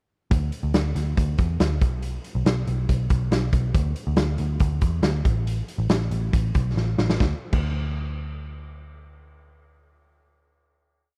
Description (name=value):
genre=jangly indie pop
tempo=139 BPM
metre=4/4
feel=straight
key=unclear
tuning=A4 = 444 Hz
part: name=vintage muted picked electric bass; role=bass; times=0.3-11.2 s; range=A1 to E2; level=-27 LUFS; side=equal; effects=none
part: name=raw garage drum kit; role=drums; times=0.3-7.7 s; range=crash cymbal, hi-hat, kick drum, snare drum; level=-26 LUFS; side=equal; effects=none
room=little or no reverb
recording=dry, close 1970s-style studio recording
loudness=-24 LUFS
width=mono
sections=0.3-7.2 verse; 7.2-10.7 final note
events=drum fill 6.8-7.2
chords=none